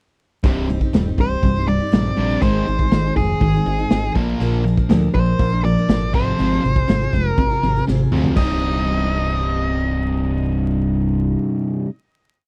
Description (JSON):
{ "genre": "classic rock", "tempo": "121 BPM", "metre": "4/4", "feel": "straight", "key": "C minor", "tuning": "A4 = 441 Hz", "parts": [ { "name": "picked steel-string acoustic guitar", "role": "accompaniment", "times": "0.4-11.9 s", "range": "Ab2 to Bb4", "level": "-31 LUFS", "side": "equal", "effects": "none" }, { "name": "crunchy overdriven guitar", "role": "riff", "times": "0.4-11.9 s", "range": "C2 to Eb4", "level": "-27 LUFS", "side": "equal", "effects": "none" }, { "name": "overdriven electric guitar", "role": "riff", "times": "0.4-11.9 s", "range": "C2 to Eb4", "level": "-25 LUFS", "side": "equal", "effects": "none" }, { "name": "modern bright picked electric bass", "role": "bass", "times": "0.4-11.4 s", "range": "C1 to D2", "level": "-24 LUFS", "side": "equal", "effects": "none" }, { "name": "raw garage drum kit", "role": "drums", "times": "0.4-8.5 s", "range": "crash cymbal, hi-hat, kick drum, snare drum, toms", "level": "-22 LUFS", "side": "equal", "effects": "none" }, { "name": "octave-fuzz lead guitar", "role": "melody", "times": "1.2-11.4 s", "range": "Ab4 to Eb5", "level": "-26 LUFS", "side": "equal", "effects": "distortion" } ], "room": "little or no reverb", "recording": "dry, close 1970s-style studio recording, vinyl crackle", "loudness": "-19 LUFS", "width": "mono", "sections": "0.4-8.4 verse; 8.4-12.3 final chord", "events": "drum fill 7.9-8.4", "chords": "0.4 Cm; 2.4 Ab; 4.2 Bb; 6.1 Fm; 8.4 Cm" }